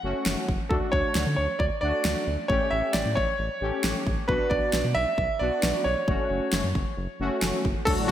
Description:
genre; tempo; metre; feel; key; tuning
synth-pop; 134 BPM; 4/4; straight; unclear; A4 = 440 Hz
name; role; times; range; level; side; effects
clear concert grand piano; melody; 0.0-8.1 s; F#4 to F#5; -27 LUFS; right 1 dB; none
analog synth brass; accompaniment; 0.0-8.1 s; F#3 to G4; -31 LUFS; left 2 dB; chorus
round analog bass; bass; 0.0-8.1 s; F#1 to D3; -30 LUFS; equal; none
pop drum kit; drums; 0.3-8.1 s; crash cymbal, hi-hat, kick drum, snare drum; -28 LUFS; equal; gated reverb
brassy analog pad; sustained chords; 7.9-8.1 s; A2 to F#4; -28 LUFS; equal; chorus, tremolo
room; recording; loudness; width
wet lush hall reverb, RT60 2.0 s, digital ambience; bright 1980s-style digital production; -23 LUFS; side -11 dB against mid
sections
0.0-7.9 A section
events
none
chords
0.0 F#m; 0.7 D; 2.5 A7; 4.3 Bm; 6.1 F#m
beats
0.26 | 0.71 1.15 1.60 2.05 | 2.50 2.94 3.39 3.84 | 4.29 4.74 5.18 5.63 | 6.08 6.53 6.97 7.42 | 7.87

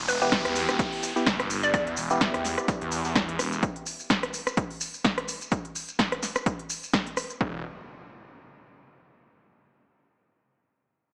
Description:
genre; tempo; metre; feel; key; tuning
bass house; 127 BPM; 4/4; swing 56% on 16ths; E minor; A4 = 440 Hz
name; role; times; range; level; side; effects
phased detuned saw bass; bass; 0.0-3.6, 7.4-7.6 s; E1 to E2; -33 LUFS; equal; phaser, overdrive, sidechain pumping
downlifter and impact; sound effects; 0.0-3.6, 7.5-9.3 s; none; -39 LUFS; equal; none
hollow square pluck; melody; 0.1-1.8 s; B4 to D5; -32 LUFS; equal; chorus, digital delay
big-room dance drum kit; drums; 0.1-7.4 s; hi-hat, rim click, snare drum; -31 LUFS; equal; overdrive
dusty soul sampler-style drum kit; drums; 0.1-3.5 s; hi-hat, snare drum; -42 LUFS; equal; none
maracas; percussion; 0.1-7.4 s; none; -38 LUFS; equal; none
percussive organ stab; stabs; 0.2-3.9 s; B3 to G4; -33 LUFS; equal; chorus, phaser, sidechain pumping, digital delay
electronic kick drum; drums; 0.3-7.5 s; none; -32 LUFS; equal; overdrive
room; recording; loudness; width
light reverb; small speaker sound; -27 LUFS; mono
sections
0.0-7.4 A section; 7.4-9.3 B section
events
none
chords
0.0 Em; 7.4 N.C.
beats
0.32 0.79 1.27 | 1.74 2.21 2.68 3.15 | 3.63 4.10 4.57 5.04 | 5.52 5.99 6.46 6.93 | 7.41 7.88 8.35 8.82

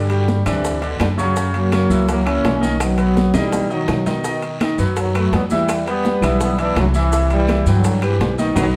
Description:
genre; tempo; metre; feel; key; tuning
latin, salsa; 166 BPM; 4/4; straight; unclear; A4 = 444 Hz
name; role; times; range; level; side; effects
clear trombone section; melody; 0.0-8.7 s; B2 to D4; -22 LUFS; equal; none
bright grand piano; accompaniment; 0.0-8.7 s; B2 to G5; -25 LUFS; equal; none
upright bass; bass; 0.0-8.7 s; B1 to B2; -23 LUFS; equal; none
bongos; percussion; 0.1-8.7 s; none; -32 LUFS; equal; none
congas; percussion; 0.1-8.7 s; none; -28 LUFS; equal; none
maracas; percussion; 0.1-8.7 s; none; -40 LUFS; equal; none
timbales; percussion; 0.1-8.7 s; none; -30 LUFS; equal; none
guiro; percussion; 0.3-8.7 s; none; -39 LUFS; equal; none
claves; percussion; 0.5-8.7 s; none; -41 LUFS; equal; none
room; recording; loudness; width
wet studio reverb, RT60 0.8 s; heard from further back in the room; -18 LUFS; mono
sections
0.0-8.8 A section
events
drum fill 3.3-4.2, 8.6; band accent 8.6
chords
0.0 Gmaj7(no3); 1.4 F#7; 2.8 B; 5.7 Em; 7.1 Cmaj7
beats
0.28 0.65 1.00 | 1.36 1.73 2.09 2.45 | 2.81 3.17 3.53 3.89 | 4.25 4.61 4.97 5.33 | 5.69 6.05 6.41 6.77 | 7.13 7.49 7.85 8.21 | 8.57

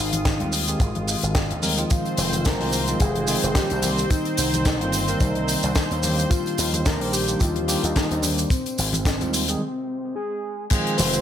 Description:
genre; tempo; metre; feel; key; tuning
nu-disco, nu disco; 109 BPM; 4/4; swing 56% on 16ths; F dorian; A4 = 439 Hz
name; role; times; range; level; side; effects
soft octave-layered synth lead; melody; 0.0-11.2 s; C4 to C5; -28 LUFS; left 1 dB; chorus, digital delay
lush unison pad; sustained chords; 0.0-11.2 s; C4 to Eb6; -31 LUFS; right 1 dB; chorus, sidechain pumping
slap bass with an envelope filter; bass; 0.0-11.2 s; F1 to Eb2; -27 LUFS; equal; none
tight funk drum kit; drums; 0.1-11.2 s; crash cymbal, hi-hat, shaker, snare drum; -26 LUFS; left 2 dB; studio reverb, gated reverb
congas and tambourine; percussion; 0.1-11.2 s; none; -33 LUFS; left 2 dB; none
kick drum; drums; 0.3-10.8 s; none; -22 LUFS; equal; studio reverb
tine electric piano; accompaniment; 0.4-11.2 s; Eb3 to C5; -27 LUFS; equal; medium tremolo, sidechain pumping
room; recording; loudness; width
light reverb, studio reverb; bright 1980s-style digital production; -20 LUFS; side -10 dB against mid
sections
0.0-10.7 A section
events
break 9.6-10.7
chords
0.0 Abmaj7; 1.9 Fm7; 3.8 Cm7; 6.0 Ebmaj7; 8.5 Abmaj7; 10.7 Fm7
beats
0.25 0.80 1.35 | 1.91 2.46 3.00 3.56 | 4.11 4.66 5.21 5.76 | 6.31 6.86 7.41 7.96 | 8.51 9.06 9.61 10.16 | 10.71

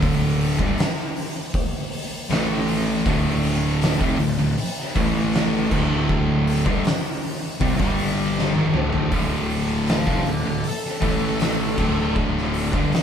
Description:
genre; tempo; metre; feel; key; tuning
stoner and doom metal; 79 BPM; 4/4; straight; unclear; A4 = 439 Hz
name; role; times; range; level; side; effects
distorted electric guitar; riff; 0.0-12.9 s; D2 to A3; -27 LUFS; equal; overdrive
thick fuzz guitar; riff; 0.0-12.9 s; D2 to A3; -26 LUFS; left 8 dB; distortion
thick fuzz guitar; riff; 0.0-12.9 s; D2 to A3; -26 LUFS; right 5 dB; distortion
fuzz picked electric bass; bass; 0.0-12.9 s; D1 to C2; -26 LUFS; equal; overdrive
oversized low-tuned drum kit; drums; 0.0-13.0 s; crash cymbal, hi-hat, kick drum, snare drum, toms; -24 LUFS; equal; none
fuzz lead guitar; melody; 9.9-12.1 s; A4 to F5; -29 LUFS; left 1 dB; distortion
room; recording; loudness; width
light reverb; band playing live in one room; -19 LUFS; side -8 dB against mid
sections
0.0-9.1 A section; 9.1-13.0 B section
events
drum fill 8.4-9.1; lead electric guitar solo 9.1-13.0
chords
0.0 D5; 2.3 A5; 3.1 Dm; 5.0 A5; 5.7 D5; 7.8 G5; 8.6 D5; 9.1 Dm; 11.0 A5; 11.8 D5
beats
| 0.03 0.79 1.55 2.30 | 3.06 3.82 4.58 5.34 | 6.09 6.85 7.61 8.37 | 9.13 9.89 10.65 11.41 | 12.17 12.93

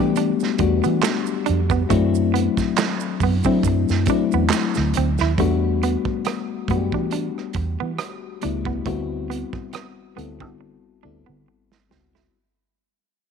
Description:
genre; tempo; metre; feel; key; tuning
R&B, neo-soul; 69 BPM; 4/4; swing 55% on 16ths; E minor; A4 = 440 Hz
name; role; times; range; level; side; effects
semi-hollow electric guitar; second line; 0.0-12.3 s; A3 to E4; -27 LUFS; right 15 dB; none
mellow FM electric piano; accompaniment; 0.0-12.4 s; F#3 to A4; -23 LUFS; left 10 dB; chorus
vintage muted fingered electric bass; bass; 0.0-12.3 s; C#2 to F#3; -23 LUFS; right 2 dB; none
crunchy breakbeat drum kit; drums; 0.2-12.3 s; handclaps, hi-hat, kick drum, rim click, snare drum; -26 LUFS; right 6 dB; none
maracas and finger snaps; percussion; 0.2-5.4 s; none; -35 LUFS; right 15 dB; none
room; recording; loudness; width
light reverb, studio ambience; 1960s-style stereo with parts hard left and right; -19 LUFS; side -6 dB against mid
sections
0.0-5.4 A section; 5.4-12.3 B section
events
fade-out 5.4-12.3; drum fill 10.6-12.3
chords
0.0 Em9; 1.9 F#m7b5; 5.4 Em9; 8.9 D13sus4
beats
0.16 1.03 | 1.90 2.77 3.64 4.51 | 5.38 6.25 7.12 7.99 | 8.86 9.73 10.60 11.47

